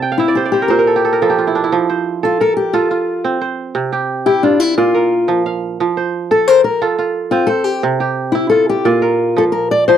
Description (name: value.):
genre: west african traditional, West African string and xylophone music.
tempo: 118 BPM (dotted quarters).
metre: 12/8.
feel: straight.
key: F major.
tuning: A4 = 440 Hz.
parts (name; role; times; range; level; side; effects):
kora; arpeggios; 0.0-10.0 s; Bb2 to A5; -16 LUFS; right 6 dB; none.
fingerpicked steel-string acoustic guitar; melody; 0.2-10.0 s; D4 to D5; -13 LUFS; left 5 dB; none.
room: light reverb.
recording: dry, close 1970s-style studio recording.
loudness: -13 LUFS.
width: side -9 dB against mid.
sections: 0.0-9.9 A section.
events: kora fill 0.0-1.7.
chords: 0.0 C; 0.7 Bb5; 1.7 F; 3.8 C; 4.8 Bb; 5.8 F; 7.8 C; 8.9 Bb.